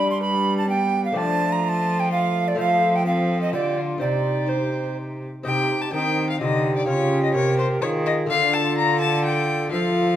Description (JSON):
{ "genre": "classical, renaissance-style consort dance", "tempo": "126 BPM", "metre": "3/4", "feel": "straight", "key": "C dorian", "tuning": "A4 = 439 Hz", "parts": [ { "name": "rich violin", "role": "melody", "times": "0.0-10.2 s", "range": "F4 to Bb5", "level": "-26 LUFS", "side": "left 5 dB", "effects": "none" }, { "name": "tenor recorder", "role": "second line", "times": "0.0-10.2 s", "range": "Eb4 to C6", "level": "-24 LUFS", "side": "right 4 dB", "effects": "none" }, { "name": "lute", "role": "accompaniment", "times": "0.0-10.2 s", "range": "C3 to Eb5", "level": "-28 LUFS", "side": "left 3 dB", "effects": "none" }, { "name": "warm trombone", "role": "accompaniment", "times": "0.0-10.2 s", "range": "A3 to G4", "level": "-28 LUFS", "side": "equal", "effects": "none" }, { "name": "rich cello", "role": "bass", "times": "0.0-10.2 s", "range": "C3 to G3", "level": "-25 LUFS", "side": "right 1 dB", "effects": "none" } ], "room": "wet recital hall reverb, RT60 1.4 s", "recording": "none", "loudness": "-19 LUFS", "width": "side -11 dB against mid", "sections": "0.0-5.5 A section; 5.5-10.2 A section", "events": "none", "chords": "0.0 G; 1.2 Dm/F; 2.6 F; 4.0 Cm; 6.9 Db; 8.3 Dm", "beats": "0.21 0.68 | 1.16 1.63 2.11 | 2.58 3.05 3.53 | 4.01 4.49 4.97 | 5.45 5.93 6.41 | 6.88 7.36 7.83 | 8.30 8.78 9.25 | 9.72" }